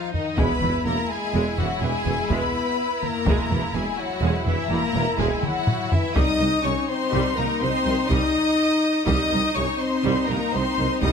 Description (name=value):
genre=cinematic, epic orchestral film score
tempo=83 BPM (dotted quarters)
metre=12/8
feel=straight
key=unclear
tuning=A4 = 440 Hz
part: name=warm symphonic violin section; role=melody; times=0.0-11.1 s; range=Eb5 to Eb6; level=-28 LUFS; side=left 4 dB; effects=none
part: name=rich chamber violin section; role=second line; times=0.0-11.1 s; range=Eb4 to Eb5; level=-29 LUFS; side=left 1 dB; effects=none
part: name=rich symphonic viola section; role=accompaniment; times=0.0-11.1 s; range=C3 to E4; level=-29 LUFS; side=equal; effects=none
part: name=mellow French horn section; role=sustained chords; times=0.0-11.1 s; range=Eb3 to Eb4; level=-26 LUFS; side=left 3 dB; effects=none
part: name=taiko ensemble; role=drums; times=0.1-11.1 s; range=none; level=-26 LUFS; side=equal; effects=none
part: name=dark symphonic cello section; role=bass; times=0.4-11.1 s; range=C2 to E2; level=-30 LUFS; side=right 3 dB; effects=none
part: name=mellow tuba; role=bass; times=0.4-11.1 s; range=E1 to C2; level=-31 LUFS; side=right 5 dB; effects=none
part: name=rich symphonic double bass section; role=bass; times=0.4-11.1 s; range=E1 to C2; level=-30 LUFS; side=right 3 dB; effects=none
room=moderate scoring stage reverb, RT60 1.5 s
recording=close, detailed microphones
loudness=-20 LUFS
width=side -6 dB against mid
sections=0.0-11.1 A section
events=drum fill 5.4-6.2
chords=0.4 E; 6.2 Cm